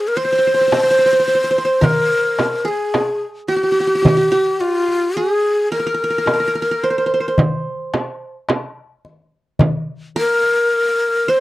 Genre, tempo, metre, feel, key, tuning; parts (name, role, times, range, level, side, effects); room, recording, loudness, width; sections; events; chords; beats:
Arabic maqam ensemble; 108 BPM (eighths); 10/8; straight; A4 = 441 Hz
breathy ney; melody; 0.0-11.4 s; F4 to C5; -16 LUFS; left 1 dB
qanun; second line; 0.0-11.4 s; Gb4+50c to C5; -21 LUFS; right 2 dB
darbuka; percussion; 0.2-11.4 s; -18 LUFS; left 1 dB
frame drum; percussion; 0.7-9.9 s; -20 LUFS; right 3 dB
light reverb; -15 LUFS; side -17 dB against mid
0.0-11.4 A section
0.17 0.73 1.28 1.84 2.39 2.95 3.50 | 4.06 4.61 5.17 5.72 6.28 6.83 7.39 7.95 8.50 9.05 | 9.61 10.16 10.72 11.28